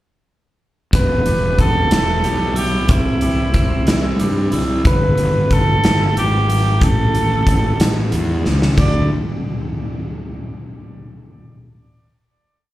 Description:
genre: quiet-loud alternative rock.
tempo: 61 BPM (dotted quarters).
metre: 6/8.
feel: straight.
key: unclear.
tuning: A4 = 444 Hz.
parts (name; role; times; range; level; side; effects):
warm cor anglais; melody; 0.9-9.1 s; E4 to D5; -21 LUFS; right 1 dB; slapback echo.
twelve-string electric guitar; arpeggios; 0.9-4.9 s; E2 to E4; -25 LUFS; right 1 dB; phaser, slapback echo, tape echo.
fuzz fingered electric bass; bass; 0.9-9.1 s; E1 to G2; -18 LUFS; equal; overdrive.
huge arena drum kit; drums; 0.9-8.9 s; crash cymbal, hi-hat, kick drum, snare drum; -18 LUFS; equal; none.
room: little or no reverb.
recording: live gig heard through the venue's PA, club reverb.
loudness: -14 LUFS.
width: side -15 dB against mid.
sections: 0.9-8.8 pre-chorus; 8.8-10.7 final note.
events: drum fill 8.5-8.8.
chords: 0.9 Em; 2.9 C; 4.9 G; 6.8 A5; 8.8 N.C..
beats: | 0.94 1.92 | 2.90 3.88 | 4.86 5.84 | 6.82 7.80 | 8.79.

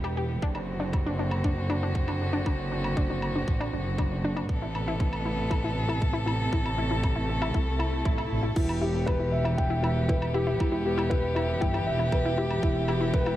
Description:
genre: piano and strings electronica.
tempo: 118 BPM.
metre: 4/4.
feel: straight.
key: E minor.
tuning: A4 = 440 Hz.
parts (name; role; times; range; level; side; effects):
warm string quartet; sustained chords; 0.0-13.4 s; C3 to A4; -32 LUFS; equal; sidechain pumping, shimmer reverb.
wide unison pluck; arpeggios; 0.0-13.4 s; D4 to G4; -34 LUFS; left 2 dB; sidechain pumping, tape echo, shimmer reverb.
clear studio double bass section; bass; 0.0-13.4 s; E1 to C2; -29 LUFS; equal; tube saturation, sidechain pumping.
electronic woodblock and crash cymbal; drums; 0.0-13.4 s; none; -40 LUFS; left 1 dB; none.
electronic kick drum; drums; 0.4-13.2 s; none; -27 LUFS; equal; none.
swell; sound effects; 7.7-8.6 s; none; -40 LUFS; right 1 dB; none.
dark concert grand piano; riff; 8.6-13.4 s; E4 to G5; -29 LUFS; left 1 dB; tape echo, shimmer reverb.
room: light reverb.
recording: none.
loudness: -25 LUFS.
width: side -14 dB against mid.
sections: 0.0-13.4 A section.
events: swell 7.7-8.6.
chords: 0.4 D7/F#; 4.5 Amadd9; 8.6 Em.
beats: | 0.43 0.94 1.45 1.96 | 2.46 2.97 3.48 3.99 | 4.50 5.01 5.51 6.02 | 6.53 7.04 7.55 8.06 | 8.57 9.07 9.58 10.09 | 10.60 11.11 11.62 12.13 | 12.63 13.14.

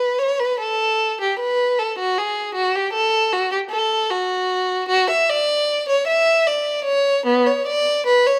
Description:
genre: classical, baroque-style suite movement for unaccompanied violin.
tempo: 77 BPM.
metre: 3/4.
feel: rubato.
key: D major from 4.9 s.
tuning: A4 = 440 Hz.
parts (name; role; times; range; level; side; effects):
warm violin; solo; 0.0-8.4 s; B3 to E5; -19 LUFS; equal; none.
room: light reverb.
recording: none.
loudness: -20 LUFS.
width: mono.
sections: 0.0-8.4 A section.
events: none.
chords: none.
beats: | 0.19 0.98 1.76 | 2.54 3.32 4.10 | 4.88 5.67 6.45 | 7.25 8.05.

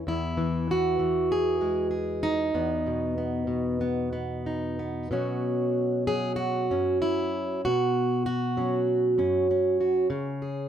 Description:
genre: folk, solo fingerstyle acoustic guitar.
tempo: 96 BPM.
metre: 4/4.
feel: rubato.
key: unclear.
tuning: A4 = 440 Hz.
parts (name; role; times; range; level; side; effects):
fingerpicked plugged-in steel-string acoustic guitar; solo; 0.0-10.7 s; E2 to G#4; -24 LUFS; right 1 dB; none.
room: light reverb.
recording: none.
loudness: -24 LUFS.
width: side -9 dB against mid.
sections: 0.0-5.1 A section; 5.1-10.7 B section.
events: none.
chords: 0.1 Emaj9; 2.5 B/E; 5.1 Bsus2; 10.1 C#5.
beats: | 0.07 0.69 1.30 1.92 | 2.55 3.17 3.80 4.46 | 5.12 5.76 6.39 7.02 | 7.64 8.26 8.88 9.49 | 10.11.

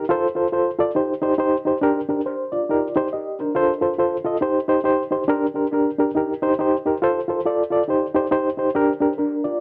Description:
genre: soul.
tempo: 139 BPM.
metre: 4/4.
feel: swing 61% on 8ths.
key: unclear.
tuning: A4 = 440 Hz.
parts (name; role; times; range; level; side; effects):
reed electric piano; solo; 0.0-9.6 s; D4 to Eb5; -21 LUFS; equal; fast tremolo, analog delay.
room: moderate studio reverb, RT60 0.7 s.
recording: cassette tape.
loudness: -21 LUFS.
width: mono.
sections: 0.0-9.6 A section.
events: none.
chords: 0.1 F; 1.0 Cm; 1.8 Gm; 2.7 Eb; 3.6 F; 4.4 Cm; 5.3 Gm; 6.2 Eb; 7.0 F; 7.9 Cm; 8.8 Gm.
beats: | 0.10 0.54 0.97 1.40 | 1.83 2.27 2.70 3.13 | 3.56 4.00 4.43 4.86 | 5.30 5.73 6.16 6.59 | 7.03 7.46 7.89 8.32 | 8.76 9.19.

